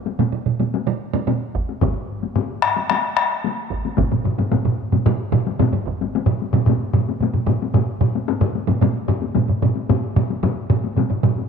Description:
japanese traditional, taiko drum ensemble; 111 BPM; 4/4; straight
taiko ensemble; percussion; 0.1-11.5 s; -25 LUFS; left 10 dB
taiko ensemble; percussion; 0.2-11.4 s; -21 LUFS; right 8 dB
taiko ensemble; percussion; 1.5-6.0 s; -25 LUFS; right 3 dB
solo taiko drums; percussion; 1.8-11.4 s; -21 LUFS; left 4 dB
wet echo chamber reverb, RT60 2.3 s; 1960s-style stereo with parts hard left and right; -18 LUFS; side -6 dB against mid
0.0-6.1 A section; 6.1-11.5 B section
0.19 0.73 1.28 | 1.82 2.36 2.90 3.44 | 3.98 4.52 5.06 5.60 | 6.14 6.68 7.21 7.75 | 8.29 8.83 9.36 9.90 | 10.44 10.97

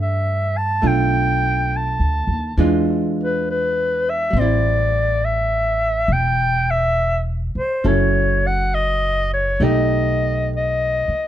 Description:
jazz ballad; 68 BPM; 4/4; swing 66% on 8ths; E minor; A4 = 441 Hz
warm clarinet; melody; 0.0-11.3 s; B4 to A5; -20 LUFS; equal
archtop guitar, miked and amplified; accompaniment; 0.0-11.3 s; E3 to A4; -23 LUFS; right 2 dB
upright bass; bass; 0.0-11.1 s; E1 to G2; -21 LUFS; equal
little or no reverb; close, detailed microphones; -17 LUFS; side -11 dB against mid
0.0-11.3 A section
0.0 Em11; 0.8 Bm7b5; 2.6 E7b9; 4.3 Am7; 7.8 F#m7; 9.6 B7b13
| 0.82 1.70 2.58 3.46 | 4.33 5.21 6.09 6.96 | 7.84 8.72 9.60 10.49

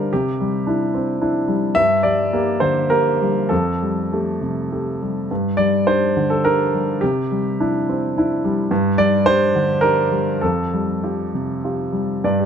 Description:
neoclassical minimalist piano; 98-110 BPM; 3/4; rubato; G dorian; A4 = 441 Hz
warm grand piano; solo; 0.0-12.5 s; F2 to E5; -17 LUFS; equal
light reverb; close, detailed microphones; -17 LUFS; side -8 dB against mid
0.0-12.2 A section
0.1 Cadd9; 1.8 Gm; 3.5 Fadd9; 5.3 Gm; 7.0 Cadd9; 8.7 Gm; 10.4 Fadd9
| 0.10 0.66 1.21 | 1.76 2.33 2.91 | 3.50 4.11 4.70 | 5.30 5.87 6.44 | 7.01 7.58 8.15 | 8.70 9.25 9.82 | 10.42 11.03 11.63 | 12.23

